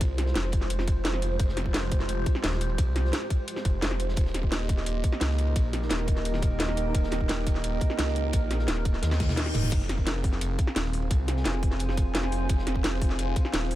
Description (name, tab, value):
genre	dark technical drum and bass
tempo	173 BPM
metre	4/4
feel	straight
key	F minor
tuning	A4 = 439 Hz
part	dark analog pad	sustained chords	0.0-13.8 s	Ab3 to F5	-35 LUFS	right 3 dB	wide subtle chorus, sidechain pumping
part	phased detuned saw bass	bass	0.0-13.8 s	Eb1 to Eb2	-28 LUFS	equal	phaser, sidechain pumping
part	crunchy breakbeat drum kit	drums	0.0-13.8 s	ride cymbal, snare drum	-42 LUFS	equal	none
part	drum and bass drum kit	drums	0.0-13.8 s	crash cymbal, hi-hat, snare drum, toms	-31 LUFS	equal	none
part	electronic kick drum	drums	0.0-13.4 s	none	-25 LUFS	equal	none
part	granular cloud pad	texture	0.0-13.8 s	Eb4 to Ab5	-36 LUFS	equal	built-in reverb, sidechain pumping
part	reverse cymbal	sound effects	9.2-9.7 s	none	-38 LUFS	left 4 dB	none
room	digital ambience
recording	none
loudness	-24 LUFS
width	side -14 dB against mid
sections	0.0-13.8 A section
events	drum fill 9.0-9.7; reverse cymbal 9.2-9.7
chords	0.0 Fm; 4.2 Eb; 9.7 Fm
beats	| 0.01 0.36 0.70 1.05 | 1.40 1.74 2.09 2.44 | 2.78 3.13 3.48 3.82 | 4.17 4.52 4.86 5.21 | 5.56 5.91 6.25 6.60 | 6.95 7.29 7.64 7.99 | 8.33 8.68 9.03 9.37 | 9.72 10.07 10.41 10.76 | 11.11 11.45 11.80 12.15 | 12.49 12.84 13.19 13.54